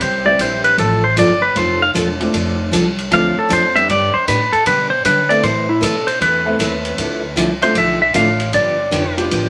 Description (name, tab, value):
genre	country, western swing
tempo	155 BPM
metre	4/4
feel	swing 65% on 8ths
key	unclear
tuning	A4 = 440 Hz
part	clean lap steel guitar	melody	0.0-9.1 s	E4 to F5	-17 LUFS	equal	none
part	picked steel-string acoustic guitar	accompaniment	0.0-9.5 s	C3 to B4	-23 LUFS	equal	none
part	upright bass	bass	0.0-9.5 s	E1 to D3	-26 LUFS	equal	none
part	swinging big-band drum kit	drums	0.0-9.4 s	hi-hat, kick drum, ride cymbal	-25 LUFS	equal	none
part	tack piano	accompaniment	0.3-9.5 s	E3 to B4	-24 LUFS	equal	none
room	moderate studio reverb, RT60 0.6 s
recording	none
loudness	-15 LUFS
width	mono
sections	0.0-9.5 A section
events	electric slide guitar solo 0.0-9.5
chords	0.0 C; 0.8 F; 2.3 Dm7/F; 3.9 G; 5.4 Amadd9; 7.0 Dmadd9; 8.5 G7